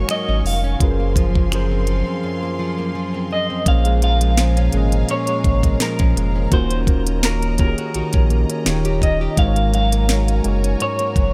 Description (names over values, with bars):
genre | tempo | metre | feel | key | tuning
contemporary R&B | 84 BPM | 4/4 | swing 54% on 16ths | Bb minor | A4 = 440 Hz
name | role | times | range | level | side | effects
clean electric guitar | melody | 0.0-11.3 s | Bb4 to F5 | -27 LUFS | equal | tremolo, slapback echo
muted felt-like synth keys | accompaniment | 0.0-11.3 s | Bb2 to Eb5 | -27 LUFS | equal | chorus
warm studio string section | sustained chords | 0.0-11.3 s | Gb4 to Db6 | -34 LUFS | equal | none
nylon-string guitar | arpeggios | 0.0-11.3 s | Gb2 to G4 | -28 LUFS | equal | slapback echo
warm sub bass | bass | 0.0-11.3 s | Eb1 to Bb1 | -21 LUFS | equal | none
trap drum kit | drums | 0.1-11.3 s | finger snaps, hi-hat, kick drum, snare drum | -21 LUFS | equal | none
room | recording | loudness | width
little or no reverb | none | -18 LUFS | mono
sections
0.0-3.7 A section; 3.7-11.3 B section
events
break 2.2-3.7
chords
0.0 Ab9sus4; 0.8 Gbmaj9#11; 3.7 Bbm7; 6.5 Ebm7; 8.7 Eb7; 9.4 Ab9sus4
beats
0.09 | 0.80 1.52 2.23 2.95 | 3.66 4.38 5.09 5.80 | 6.52 7.23 7.95 8.66 | 9.38 10.09 10.80